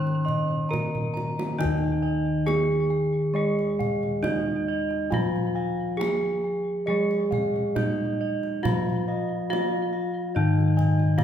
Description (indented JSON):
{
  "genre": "Javanese gamelan",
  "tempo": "68 BPM",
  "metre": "4/4",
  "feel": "straight",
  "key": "Eb slendro",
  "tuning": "A4 = 436 Hz",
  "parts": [
    { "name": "gamelan-type bronze metallophone", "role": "melody", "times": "0.0-11.2 s", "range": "Eb4 to Db5-40c", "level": "-27 LUFS", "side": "right 2 dB", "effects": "tape echo" },
    { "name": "gamelan-type bronze metallophone", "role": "accompaniment", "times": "0.0-11.2 s", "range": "Eb3 to Db4-40c", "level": "-28 LUFS", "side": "left 2 dB", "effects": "none" },
    { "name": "gamelan-type bossed gongs", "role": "arpeggios", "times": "0.0-11.2 s", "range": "Eb5 to Bb5+20c", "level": "-36 LUFS", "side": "left 1 dB", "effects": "none" },
    { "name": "gamelan-type bronze metallophone", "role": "arpeggios", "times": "0.0-11.2 s", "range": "Eb5 to Db6-40c", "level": "-34 LUFS", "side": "right 3 dB", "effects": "none" },
    { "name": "gamelan-type bossed gongs", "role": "bass", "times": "0.0-11.2 s", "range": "Eb2 to Ab4-20c", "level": "-30 LUFS", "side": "left 1 dB", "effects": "none" },
    { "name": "kendang", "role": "percussion", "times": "0.1-11.2 s", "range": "none", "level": "-32 LUFS", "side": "right 2 dB", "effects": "none" }
  ],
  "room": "wet recital hall reverb, RT60 1.7 s",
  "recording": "heard from further back in the room",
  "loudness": "-23 LUFS",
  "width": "side -9 dB against mid",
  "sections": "0.0-11.2 A section",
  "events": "drum fill 0.9-1.6",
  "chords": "none"
}